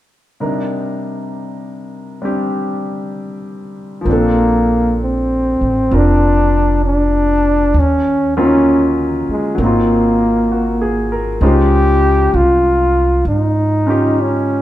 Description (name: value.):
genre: jazz ballad.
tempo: 65 BPM.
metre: 4/4.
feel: swing 68% on 8ths.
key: Bb major.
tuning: A4 = 440 Hz.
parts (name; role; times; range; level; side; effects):
clear grand piano; accompaniment; 0.4-14.6 s; C3 to C5; -18 LUFS; equal; none.
clear trombone; melody; 4.1-14.6 s; Ab3 to G4; -14 LUFS; equal; none.
upright bass; bass; 4.1-14.6 s; F1 to Ab2; -17 LUFS; right 1 dB; none.
room: moderate large studio reverb, RT60 1.3 s.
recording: band playing live in one room.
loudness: -12 LUFS.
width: side -14 dB against mid.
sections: 0.4-4.1 A section; 4.1-14.6 B section.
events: none.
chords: 0.4 Cm7; 4.1 Bbmaj9; 7.7 Ebm7; 9.6 Ab13; 11.4 Dbmaj9.